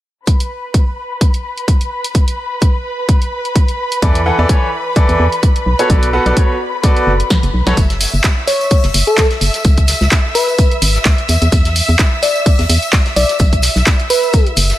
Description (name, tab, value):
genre	piano house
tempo	128 BPM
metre	4/4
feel	swing 55% on 16ths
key	B minor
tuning	A4 = 440 Hz
part	rich symphonic string section	sustained chords	0.3-14.8 s	B4 to E6	-22 LUFS	equal	sidechain pumping, low-pass filter
part	electronic kick drum	drums	0.3-14.4 s	none	-12 LUFS	equal	none
part	punchy analog drum machine	drums	0.3-14.8 s	handclaps, hi-hat, snare drum	-18 LUFS	right 1 dB	none
part	bright concert grand piano	riff	4.0-7.8 s	E3 to F#5	-16 LUFS	equal	sidechain pumping, dub echo
part	organ-like FM bass	bass	4.0-14.7 s	F#1 to E2	-15 LUFS	equal	sidechain pumping
part	big rock drum kit	drums	7.8-14.8 s	hi-hat, shaker, snare drum	-28 LUFS	left 1 dB	none
part	tambourine	percussion	7.8-14.8 s	none	-26 LUFS	left 6 dB	none
part	soft struck synth lead	melody	8.5-14.5 s	A4 to D5	-17 LUFS	left 1 dB	chorus, dub echo
room	small room ambience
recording	none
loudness	-11 LUFS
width	side -14 dB against mid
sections	0.3-7.8 A section; 7.8-14.8 B section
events	drum fill 7.3-7.8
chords	0.3 N.C.; 3.8 E7sus4; 5.7 Bm7; 7.8 F#7(no3); 9.6 C#m7; 11.3 Dsus2/E; 13.2 B5